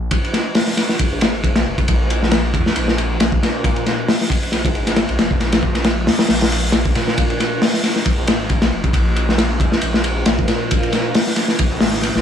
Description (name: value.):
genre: breakbeat, breaks.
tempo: 136 BPM.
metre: 4/4.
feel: swing 56% on 16ths.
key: unclear.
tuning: A4 = 441 Hz.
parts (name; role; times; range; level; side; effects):
phased detuned saw bass; bass; 0.0-12.2 s; F1 to Bb2; -21 LUFS; equal; phaser, tube saturation.
crunchy breakbeat drum kit; drums; 0.1-12.2 s; hi-hat, kick drum, ride cymbal, snare drum; -16 LUFS; left 1 dB; none.
room: light reverb.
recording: dry, gritty hardware recording, cassette tape.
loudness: -15 LUFS.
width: side -8 dB against mid.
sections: 0.1-12.2 A section.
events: drop 0.1-12.2.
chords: none.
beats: | 0.12 0.56 1.00 1.44 | 1.88 2.32 2.76 3.20 | 3.65 4.09 4.53 4.97 | 5.41 5.85 6.29 6.73 | 7.17 7.62 8.06 8.50 | 8.94 9.38 9.82 10.26 | 10.70 11.14 11.59 12.03.